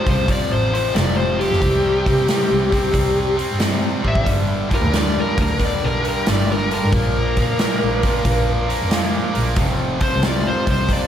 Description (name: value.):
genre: blues rock power trio and southern rock.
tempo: 90 BPM.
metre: 4/4.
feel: swing 67% on 8ths.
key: unclear.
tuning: A4 = 439 Hz.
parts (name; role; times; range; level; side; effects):
dark smooth lead guitar; melody; 0.0-11.1 s; G4 to E5; -21 LUFS; left 1 dB; overdrive, slapback echo.
distorted electric guitar; riff; 0.0-11.1 s; F2 to C4; -23 LUFS; equal; overdrive, slapback echo.
rich double bass; bass; 0.1-11.1 s; F1 to C3; -22 LUFS; equal; none.
big rock drum kit; drums; 0.1-11.1 s; hi-hat, kick drum, snare drum; -21 LUFS; equal; none.
tonewheel organ; sustained chords; 4.3-11.1 s; C4 to D5; -32 LUFS; right 3 dB; slow rotary speaker.
room: moderate scoring stage reverb, RT60 2.0 s, small room ambience.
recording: big arena sound.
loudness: -16 LUFS.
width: side -10 dB against mid.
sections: 0.0-11.1 A section.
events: drum fill 3.9-4.3.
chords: 0.0 F; 1.6 C5; 4.3 G; 6.9 Bb; 9.6 F.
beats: 0.28 0.95 | 1.61 2.28 2.94 3.60 | 4.27 4.93 5.60 6.26 | 6.92 7.58 8.24 8.91 | 9.57 10.23 10.89.